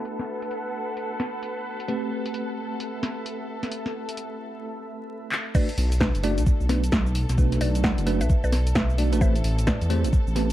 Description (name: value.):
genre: UK garage, two-step garage.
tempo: 131 BPM.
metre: 4/4.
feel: swing 62% on 16ths.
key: unclear.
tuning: A4 = 443 Hz.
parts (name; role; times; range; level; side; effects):
clear studio violin section; sustained chords; 0.0-10.5 s; A4; -38 LUFS; left 2 dB; sidechain pumping.
bell-like tine electric piano; stabs; 0.0-10.5 s; A3 to D5; -30 LUFS; right 1 dB; medium stereo tremolo, digital delay.
granular cloud pad; texture; 0.0-4.6 s; A4 to B5; -35 LUFS; equal; built-in reverb, sidechain pumping.
punchy analog drum machine; drums; 0.1-10.5 s; crash cymbal, handclaps, hi-hat, shaker, snare drum; -28 LUFS; equal; none.
mallet-like synth pluck; melody; 5.5-9.9 s; D4 to F#5; -34 LUFS; equal; chorus, ping-pong delay.
electronic kick drum; drums; 5.5-10.2 s; none; -22 LUFS; equal; overdrive.
dark detuned saw bass; bass; 5.8-10.5 s; F#1 to E2; -23 LUFS; equal; none.
room: digital ambience.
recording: dark, warm production, vinyl crackle, low-pass filter.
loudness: -22 LUFS.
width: side -14 dB against mid.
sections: 0.0-5.5 A section; 5.5-10.5 B section.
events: filter sweep on tine electric piano 0.0-5.5; filter sweep 0.0-5.5; drum fill 5.3; drop 5.5-10.5.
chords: 0.0 Bm7; 1.9 Am9; 5.5 Bm7; 9.2 Am9.